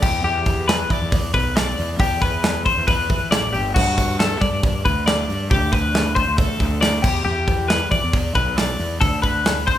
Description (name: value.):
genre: math rock and midwest emo.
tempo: 137 BPM.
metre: 4/4.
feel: straight.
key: unclear.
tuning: A4 = 440 Hz.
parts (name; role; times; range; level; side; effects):
twelve-string electric guitar; arpeggios; 0.0-9.8 s; F#4 to D5; -21 LUFS; left 4 dB; none.
fuzz fingered electric bass; bass; 0.0-9.7 s; G1 to G3; -24 LUFS; equal; overdrive.
modern studio drum kit; drums; 0.0-9.8 s; crash cymbal, hi-hat, kick drum, snare drum; -20 LUFS; right 1 dB; none.
room: light reverb.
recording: none.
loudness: -17 LUFS.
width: side -11 dB against mid.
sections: 0.0-9.8 A section.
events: none.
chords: 0.0 Em7; 2.0 Cmaj9/E; 3.8 Gmaj7sus2; 5.5 D7sus4; 7.0 Em7; 9.0 D5.